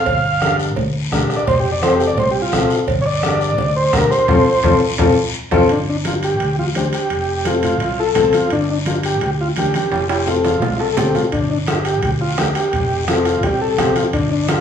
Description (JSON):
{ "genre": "latin, cumbia", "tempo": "170 BPM", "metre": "4/4", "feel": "straight", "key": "G minor", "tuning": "A4 = 441 Hz", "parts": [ { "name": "overdriven combo organ", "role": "melody", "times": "0.0-14.6 s", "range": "D4 to F5", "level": "-18 LUFS", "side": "equal", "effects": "none" }, { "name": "fingered electric bass", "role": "bass", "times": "0.1-14.6 s", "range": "F1 to F2", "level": "-23 LUFS", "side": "equal", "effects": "none" }, { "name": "bombo", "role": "percussion", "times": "0.1-5.6, 11.3-14.6 s", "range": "none", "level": "-22 LUFS", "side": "equal", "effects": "none" }, { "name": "congas", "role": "percussion", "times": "0.1-14.6 s", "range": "none", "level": "-26 LUFS", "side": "right 2 dB", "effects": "none" }, { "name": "cowbell and timbales", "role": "percussion", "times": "0.1-14.6 s", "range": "none", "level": "-26 LUFS", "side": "right 4 dB", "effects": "none" }, { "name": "guiro", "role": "percussion", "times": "0.1-14.6 s", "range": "none", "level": "-30 LUFS", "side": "left 6 dB", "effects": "none" }, { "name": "warm upright piano", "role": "accompaniment", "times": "0.4-14.6 s", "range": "C4 to C5", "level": "-19 LUFS", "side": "left 4 dB", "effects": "none" } ], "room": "wet large studio reverb, RT60 0.8 s", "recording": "band playing live in one room, small room ambience", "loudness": "-14 LUFS", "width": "side -8 dB against mid", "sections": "0.0-5.7 A section; 5.7-14.6 B section", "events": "transistor combo organ solo 0.0-5.7; band accent 4.3-5.7; drum fill 5.2-5.7, 9.9-11.3", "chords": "0.1 Gm; 1.5 F; 2.9 Gm; 4.3 F; 5.7 Gm; 7.1 F; 8.5 Gm; 9.9 F; 11.3 Gm; 12.7 F" }